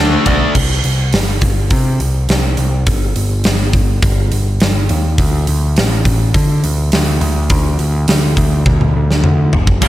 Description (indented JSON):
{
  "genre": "quiet-loud alternative rock",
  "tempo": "104 BPM",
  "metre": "4/4",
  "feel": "straight",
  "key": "unclear",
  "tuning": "A4 = 441 Hz",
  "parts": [
    { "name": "fuzz guitar", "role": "riff", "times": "0.0-0.5, 9.8-9.9 s", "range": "G2 to D4", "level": "-14 LUFS", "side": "equal", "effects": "distortion" },
    { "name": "growling picked electric bass", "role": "bass", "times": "0.0-9.9 s", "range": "F#1 to D3", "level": "-14 LUFS", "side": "equal", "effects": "overdrive" },
    { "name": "big rock drum kit", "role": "drums", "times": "0.3-9.9 s", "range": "crash cymbal, hi-hat, kick drum, ride cymbal, snare drum, toms", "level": "-15 LUFS", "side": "equal", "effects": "none" }
  ],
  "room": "studio reverb",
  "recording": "none",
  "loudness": "-11 LUFS",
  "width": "side -15 dB against mid",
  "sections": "0.5-9.8 A section",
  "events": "drum fill 8.7-9.8",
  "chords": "0.0 D5; 0.5 C5; 2.9 N.C.",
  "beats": "| 0.55 1.13 1.71 2.29 | 2.86 3.44 4.02 4.60 | 5.18 5.76 6.34 6.92 | 7.50 8.08 8.66 9.24 | 9.81"
}